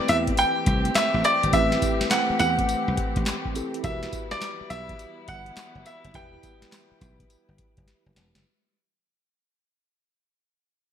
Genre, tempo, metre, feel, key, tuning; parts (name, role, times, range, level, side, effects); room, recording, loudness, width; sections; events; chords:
R&B, new jack swing; 104 BPM; 4/4; swing 65% on 16ths; A4 = 440 Hz
bright concert grand piano; melody; 0.0-7.8 s; D5 to G5; -24 LUFS; equal
tine electric piano; accompaniment; 0.0-8.5 s; C4 to B4; -32 LUFS; right 2 dB; medium stereo tremolo
muted studio string section; sustained chords; 0.0-8.4 s; E3 to G4; -32 LUFS; left 1 dB
dry thumbed slap bass; bass; 0.0-8.4 s; E1 to E2; -27 LUFS; equal
booming analog drum machine; drums; 0.1-8.4 s; handclaps, hi-hat, kick drum, snare drum, tambourine; -28 LUFS; equal; gated reverb
moderate plate reverb, RT60 1.2 s; bright 1980s-style digital production; -21 LUFS; side -9 dB against mid
0.0-8.5 A section
fade-out 0.0-8.5; drum fill 7.9-8.5
0.0 Am7; 3.8 Emadd9